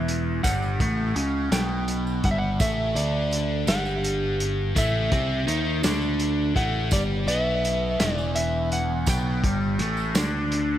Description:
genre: psychedelic rock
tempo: 56 BPM (dotted quarters)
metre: 6/8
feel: straight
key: unclear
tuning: A4 = 440 Hz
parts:
  - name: electric slide guitar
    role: melody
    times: 0.0-10.5 s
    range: D5 to G5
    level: -30 LUFS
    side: equal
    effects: tape echo
  - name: overdriven electric guitar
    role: riff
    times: 0.0-10.8 s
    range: E2 to D#4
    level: -26 LUFS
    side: equal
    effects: phaser
  - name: picked electric bass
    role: bass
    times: 0.0-10.8 s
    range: E1 to D#2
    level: -27 LUFS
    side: equal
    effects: none
  - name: vintage drum kit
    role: drums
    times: 0.1-10.7 s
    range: hi-hat, kick drum, snare drum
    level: -27 LUFS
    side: equal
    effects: none
  - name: tambourine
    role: percussion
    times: 0.4-10.3 s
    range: none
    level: -38 LUFS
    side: right 10 dB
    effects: none
room: light reverb, small room reverb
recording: none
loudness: -22 LUFS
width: side -11 dB against mid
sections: 0.0-10.8 A section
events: none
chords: 0.0 G5; 2.6 A5; 6.9 G5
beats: | 0.44 1.52 | 2.60 3.68 | 4.76 5.84 | 6.92 8.00 | 9.08 10.16

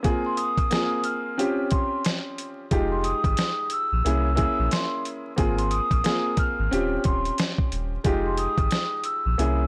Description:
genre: hip hop, boom-bap hip-hop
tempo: 90 BPM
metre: 4/4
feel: swing 61% on 16ths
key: F minor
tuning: A4 = 442 Hz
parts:
  - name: warm concert grand piano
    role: accompaniment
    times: 0.0-9.6 s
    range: Ab3 to Ab4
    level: -30 LUFS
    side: equal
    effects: high-pass filter, low-pass filter
  - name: dusty soul sampler-style drum kit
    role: drums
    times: 0.0-9.6 s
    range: hi-hat, kick drum, snare drum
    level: -28 LUFS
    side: equal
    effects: none
  - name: vibraphone with soft mallets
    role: melody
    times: 0.3-9.7 s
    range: C6 to F6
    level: -30 LUFS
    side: equal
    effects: high-pass filter, low-pass filter, tape echo
  - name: soft dub sub bass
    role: bass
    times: 2.7-9.7 s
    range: Eb1 to C2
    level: -29 LUFS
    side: equal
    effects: tube saturation
room: little or no reverb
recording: blown-out, overdriven recording, vinyl crackle, overdrive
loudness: -25 LUFS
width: mono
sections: 0.0-9.7 A section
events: break 0.0-2.7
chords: 0.0 Ab69; 1.4 Dbmaj7#11/C; 2.7 Fm9; 4.0 C7b9b13; 5.4 Ab69; 6.7 Eb13; 8.0 Fm9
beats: | 0.05 0.71 1.38 2.05 | 2.71 3.38 4.05 4.71 | 5.38 6.05 6.71 7.38 | 8.05 8.71 9.38

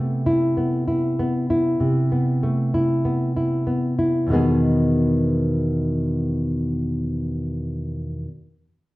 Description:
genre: pop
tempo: 97 BPM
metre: 4/4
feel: straight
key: E major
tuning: A4 = 443 Hz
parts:
  - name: nylon-string guitar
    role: solo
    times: 0.0-8.3 s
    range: E2 to G#4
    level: -19 LUFS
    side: equal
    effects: none
room: wet large studio reverb, RT60 0.8 s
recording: band playing live in one room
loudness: -19 LUFS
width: side -19 dB against mid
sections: 0.0-4.3 A section; 4.3-6.8 B section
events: none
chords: 0.0 Amadd9/C; 4.3 Emaj7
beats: 0.57 1.19 | 1.81 2.43 3.05 3.67 | 4.29 4.91 5.53 6.15

